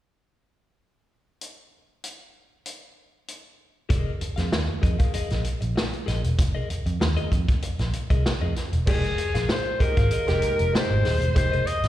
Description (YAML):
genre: funk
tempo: 96 BPM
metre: 4/4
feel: straight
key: F minor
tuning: A4 = 440 Hz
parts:
  - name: vintage drum kit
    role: drums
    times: 1.4-11.9 s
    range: crash cymbal, hi-hat, kick drum, snare drum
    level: -25 LUFS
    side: equal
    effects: none
  - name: clean electric guitar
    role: accompaniment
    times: 3.9-11.9 s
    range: Ab4 to F5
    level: -35 LUFS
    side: left 7 dB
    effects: wide subtle chorus, plate reverb, slapback echo
  - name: vintage muted picked electric bass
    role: bass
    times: 3.9-11.9 s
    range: Eb1 to F2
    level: -24 LUFS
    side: equal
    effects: none
  - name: raspy alto saxophone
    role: melody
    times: 8.9-11.9 s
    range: Ab4 to Eb5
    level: -25 LUFS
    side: left 1 dB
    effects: plate reverb, slapback echo, analog delay
  - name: warm upright piano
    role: stabs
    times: 8.9-11.6 s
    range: Ab3 to Bb4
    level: -31 LUFS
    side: right 4 dB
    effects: plate reverb, slapback echo
room: light reverb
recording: live gig heard through the venue's PA, recital hall reverb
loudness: -21 LUFS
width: side -13 dB against mid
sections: 1.4-3.9 A section; 3.9-8.9 B section; 8.9-11.9 C section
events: none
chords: 1.4 N.C.; 3.9 Fm7; 8.9 Fm11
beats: | 1.42 2.04 2.66 3.28 | 3.90 4.53 5.15 5.77 | 6.39 7.01 7.63 8.26 | 8.88 9.50 10.12 10.74 | 11.36